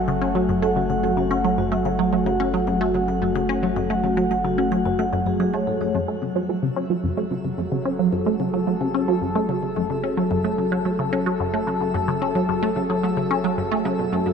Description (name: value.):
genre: ambient, sequencer-driven space music.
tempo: 110 BPM.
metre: 4/4.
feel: straight.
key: F# minor.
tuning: A4 = 437 Hz.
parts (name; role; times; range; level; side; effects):
sweeping resonant pad; sustained chords; 0.0-14.3 s; F#3 to G#5; -24 LUFS; left 1 dB; chorus, shimmer reverb.
vibraphone with soft mallets; arpeggios; 0.0-5.9 s; F#4 to F#5; -27 LUFS; left 1 dB; auto-pan, tape echo, shimmer reverb.
round analog bass; bass; 0.0-14.3 s; F#1; -36 LUFS; equal; none.
resonant blip pluck; riff; 0.1-14.3 s; F#2 to C#4; -23 LUFS; right 1 dB; chorus, phaser, tape echo, shimmer reverb.
twinkling granular texture; texture; 6.3-14.3 s; E5; -41 LUFS; equal; built-in reverb, shimmer reverb.
room: wet plate reverb, RT60 3.1 s.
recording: none.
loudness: -20 LUFS.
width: side -6 dB against mid.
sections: 0.0-5.9 A section; 5.9-14.3 B section.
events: fade-in on analog synth bass 5.9-14.3.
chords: 0.0 F#madd9.